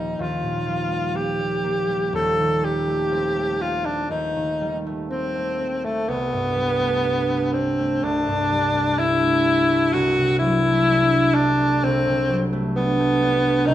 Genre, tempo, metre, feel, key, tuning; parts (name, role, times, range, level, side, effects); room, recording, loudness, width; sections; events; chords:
classical, impressionist duo for alto saxophone and harp; 62 BPM; 4/4; rubato; A4 = 441 Hz
clear alto saxophone; melody; 0.0-13.7 s; A3 to A4; -21 LUFS; left 1 dB
concert harp; accompaniment; 0.0-13.7 s; Eb1 to D4; -23 LUFS; right 1 dB
wet recital hall reverb, RT60 1.5 s; -19 LUFS; side -12 dB against mid
0.0-13.7 A section
0.0 Eb69; 2.2 F9/Eb; 6.1 C69; 9.9 D9/C